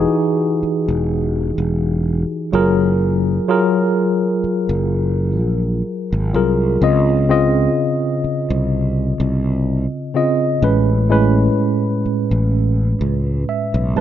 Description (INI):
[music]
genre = contemporary R&B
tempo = 63 BPM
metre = 4/4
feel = swing 54% on 16ths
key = Db major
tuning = A4 = 440 Hz
[part]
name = tine electric piano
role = accompaniment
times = 0.0-14.0 s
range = A2 to A5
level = -17 LUFS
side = equal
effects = slow stereo tremolo
[part]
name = sustaining fretless electric bass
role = bass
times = 0.0-14.0 s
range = E1 to Db2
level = -18 LUFS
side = equal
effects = none
[sound]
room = moderate lush hall reverb, RT60 2.2 s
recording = nothing above 7.4 kHz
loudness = -15 LUFS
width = side -11 dB against mid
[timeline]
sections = 0.0-14.0 A section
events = tine electric piano fill 13.0-14.0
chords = 0.0 Emaj9; 2.5 Gbmaj9; 6.8 Dbmaj9; 10.6 Amaj9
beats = 0.15 1.10 2.06 | 3.01 3.96 4.91 5.86 | 6.82 7.77 8.72 9.67 | 10.63 11.58 12.53 13.48